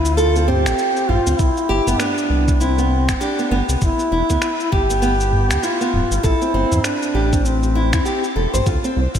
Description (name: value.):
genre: organic downtempo.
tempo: 99 BPM.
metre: 4/4.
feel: swing 59% on 16ths.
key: D dorian.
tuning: A4 = 439 Hz.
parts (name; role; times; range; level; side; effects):
mellow duduk; melody; 0.0-8.4 s; C4 to G4; -21 LUFS; equal; tape echo.
round analog bass; bass; 0.0-9.2 s; D1 to E2; -19 LUFS; equal; sidechain pumping.
electronic shaker and finger snaps; drums; 0.1-9.2 s; none; -27 LUFS; equal; none.
nylon-string guitar; arpeggios; 0.2-9.0 s; B3 to C5; -22 LUFS; right 1 dB; tape echo.
udu; percussion; 0.5-8.6 s; none; -25 LUFS; right 1 dB; none.
electronic kick drum; drums; 1.4-9.2 s; none; -20 LUFS; equal; none.
room: moderate lush hall reverb, RT60 2.7 s.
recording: dreamy mix soaked in reverb.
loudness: -15 LUFS.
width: side -8 dB against mid.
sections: 0.0-9.2 A section.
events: none.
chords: 0.0 Dm7; 1.4 Cmaj7; 3.8 G6; 6.2 Am7; 8.7 Dm7.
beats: 0.18 0.79 | 1.39 2.00 2.61 3.21 | 3.82 4.42 5.03 5.64 | 6.24 6.85 7.45 8.06 | 8.67.